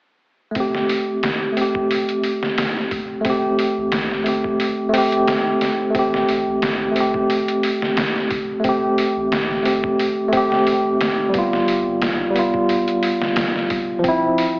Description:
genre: trip hop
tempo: 89 BPM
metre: 4/4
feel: swing 54% on 16ths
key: A minor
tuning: A4 = 435 Hz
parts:
  - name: tine electric piano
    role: accompaniment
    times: 0.5-14.6 s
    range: F3 to G4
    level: -18 LUFS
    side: equal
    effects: tremolo, vintage 12-bit sampler grit, tape echo
  - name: trip hop sampler-style drum kit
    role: drums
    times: 0.6-14.6 s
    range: hi-hat, kick drum, snare drum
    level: -24 LUFS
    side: equal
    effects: overdrive, studio reverb
  - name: soft dub sub bass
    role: bass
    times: 3.8-14.6 s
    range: D1 to A1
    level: -40 LUFS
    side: equal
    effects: none
room: wet plate reverb, RT60 2.2 s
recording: dreamy mix soaked in reverb, AM radio sound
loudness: -17 LUFS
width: side -27 dB against mid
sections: 0.6-5.9 A section; 5.9-14.6 B section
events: kick drops out 4.6-5.9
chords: 0.6 Am7; 11.3 G7; 14.0 Dm9 (rootless)

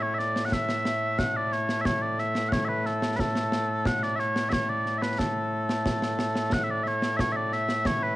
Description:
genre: scottish traditional, Scottish pipe music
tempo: 90 BPM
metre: 2/4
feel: straight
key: A major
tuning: A4 = 439 Hz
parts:
  - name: mellow small bagpipes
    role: melody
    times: 0.0-8.2 s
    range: A2 to F#5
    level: -26 LUFS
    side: equal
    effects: cassette tape
  - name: concert snare drum and concert bass drum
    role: drums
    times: 0.2-8.0 s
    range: none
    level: -30 LUFS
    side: equal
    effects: none
room: light reverb, small room reverb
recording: home recording on cassette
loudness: -24 LUFS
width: side -17 dB against mid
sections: 0.0-6.5 A section; 6.5-8.2 A section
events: none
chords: none

